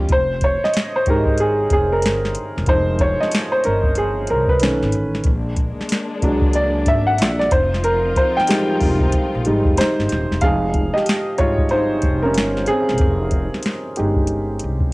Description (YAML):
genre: R&B, neo-soul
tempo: 93 BPM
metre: 4/4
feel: swing 61% on 16ths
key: F minor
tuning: A4 = 440 Hz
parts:
  - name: warm upright piano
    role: accompaniment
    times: 0.0-14.9 s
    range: D#3 to G5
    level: -18 LUFS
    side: equal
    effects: cassette tape
  - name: warm studio string section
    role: sustained chords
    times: 0.0-0.1, 5.2-10.4 s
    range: F3 to F4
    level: -27 LUFS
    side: left 2 dB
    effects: cassette tape
  - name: upright bass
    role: bass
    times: 0.0-14.9 s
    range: Eb1 to C#2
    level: -23 LUFS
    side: equal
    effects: none
  - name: soft vintage rhythm box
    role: drums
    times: 0.1-14.9 s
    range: hi-hat, kick drum, snare drum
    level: -20 LUFS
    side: equal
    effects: none
room: light reverb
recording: home recording on cassette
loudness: -16 LUFS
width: side -21 dB against mid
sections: 0.1-10.4 A section; 10.4-14.9 B section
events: upright piano solo 0.1-10.4, 10.4-14.9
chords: 0.1 Fm9; 4.6 B9; 5.3 Bb7alt; 7.5 Fm7; 10.4 Fm9